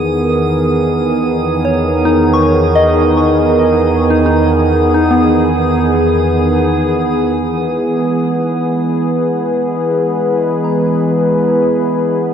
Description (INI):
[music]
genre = ambient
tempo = 54 BPM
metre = 4/4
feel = straight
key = unclear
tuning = A4 = 439 Hz
[part]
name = warm analog pad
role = sustained chords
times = 0.0-12.3 s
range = E2 to B4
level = -12 LUFS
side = equal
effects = chorus
[part]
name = soft synth bell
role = arpeggios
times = 0.0-12.3 s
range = B3 to C#6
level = -16 LUFS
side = left 1 dB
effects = chorus, phaser, tape echo
[part]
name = drifting glass-harmonics texture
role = texture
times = 0.0-7.4 s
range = D#6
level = -27 LUFS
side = right 3 dB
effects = chorus, built-in reverb
[sound]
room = wet huge ambient reverb, RT60 8.6 s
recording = dreamy mix soaked in reverb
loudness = -11 LUFS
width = side -8 dB against mid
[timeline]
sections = 0.0-7.4 A section; 7.4-12.3 B section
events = filter sweep on analog synth pad 0.0-7.4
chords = 0.0 G#madd9/E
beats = 0.70 1.81 | 2.92 4.03 5.14 6.25 | 7.37 8.48 9.59 10.70 | 11.81